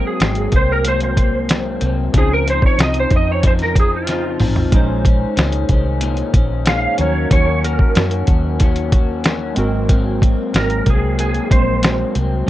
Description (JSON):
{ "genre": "indie pop, bedroom pop", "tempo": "93 BPM", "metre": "4/4", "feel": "straight", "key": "unclear", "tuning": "A4 = 440 Hz", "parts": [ { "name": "clean lap steel guitar", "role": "melody", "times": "0.0-12.1 s", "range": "F4 to F5", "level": "-20 LUFS", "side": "right 2 dB", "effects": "ensemble chorus, analog delay, plate reverb" }, { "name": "electric guitar through a small old amp", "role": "accompaniment", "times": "0.0-12.5 s", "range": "Ab2 to Gb4", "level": "-23 LUFS", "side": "left 5 dB", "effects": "analog chorus, vibrato effect" }, { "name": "warbly lo-fi synth keys", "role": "accompaniment", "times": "0.0-12.5 s", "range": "F3 to C5", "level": "-26 LUFS", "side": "right 3 dB", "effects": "chorus" }, { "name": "vintage muted fingered electric bass", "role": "bass", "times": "0.2-12.4 s", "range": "Ab1 to Gb2", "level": "-20 LUFS", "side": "equal", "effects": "none" }, { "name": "lo-fi sampler-style drum kit", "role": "drums", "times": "0.2-12.3 s", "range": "hi-hat, kick drum, snare drum, toms", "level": "-15 LUFS", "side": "equal", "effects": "vintage 12-bit sampler grit" } ], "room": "light reverb", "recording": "none", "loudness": "-14 LUFS", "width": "side -14 dB against mid", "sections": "0.0-12.5 A section", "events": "electric slide guitar solo 0.0-12.5; drum fill 4.1-4.7", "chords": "0.0 Ab9; 2.1 Dbmaj9; 4.7 Bbm11; 7.0 Ebm7; 9.6 Ab9" }